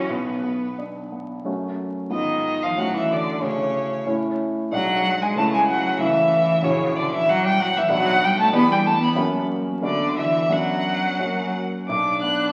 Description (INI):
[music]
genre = quick classical-period movement for piano trio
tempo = 86-96 BPM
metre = 2/4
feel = rubato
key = B minor from 6.6 s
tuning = A4 = 440 Hz
[part]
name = rich violin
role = melody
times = 0.0-12.5 s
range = B4 to F#6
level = -24 LUFS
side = equal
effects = none
[part]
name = rich cello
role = second line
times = 0.0-12.5 s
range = C#3 to D4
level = -28 LUFS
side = equal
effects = none
[part]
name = dark grand piano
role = accompaniment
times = 0.0-12.5 s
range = A#1 to G4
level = -28 LUFS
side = equal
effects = none
[sound]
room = wet recital hall reverb, RT60 1.7 s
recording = very old 78 rpm record, vinyl crackle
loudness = -22 LUFS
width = mono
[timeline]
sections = 0.0-1.5 A section; 1.5-11.9 B section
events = none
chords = 0.1 Bm; 1.5 F#m; 2.1 Fdim/Ab; 2.8 F#m/A; 4.1 A; 4.7 G#dim/B; 5.4 A/C#; 6.6 F#7/A#; 7.9 Bm; 8.5 Em7; 9.2 F#; 9.8 Bm/D; 10.5 Bm/F#; 11.2 F#; 11.9 Bm